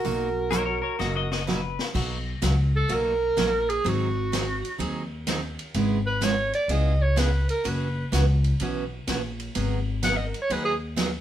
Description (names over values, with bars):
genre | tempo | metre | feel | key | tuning
country, western swing | 126 BPM | 4/4 | swing 67% on 8ths | B major | A4 = 438 Hz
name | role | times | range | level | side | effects
vintage hollow-body jazz guitar | melody | 0.0-1.4 s | F#4 | -33 LUFS | right 2 dB | none
bright clarinet | second line | 0.0-10.7 s | F#4 to F#5 | -26 LUFS | right 2 dB | none
picked steel-string acoustic guitar | accompaniment | 0.0-11.1 s | B2 to G#4 | -29 LUFS | right 4 dB | none
upright bass | bass | 0.0-11.2 s | F#1 to D#2 | -26 LUFS | left 1 dB | none
swinging big-band drum kit | drums | 0.0-11.1 s | crash cymbal, hi-hat, kick drum, ride cymbal, snare drum | -33 LUFS | left 2 dB | none
pedal steel guitar | second line | 0.5-1.9 s | F#4 to D#5 | -29 LUFS | left 6 dB | none
room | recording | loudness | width
moderate studio reverb, RT60 0.7 s | band playing live in one room | -23 LUFS | side -11 dB against mid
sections
0.0-1.9 A section; 1.9-11.2 B section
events
drum fill 1.0-1.9; clarinet solo 1.9-11.2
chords
0.0 Bmaj7; 1.9 Bmaj9; 3.8 G#7; 5.7 C#m7/G#; 7.6 F#7sus4; 9.5 G#m7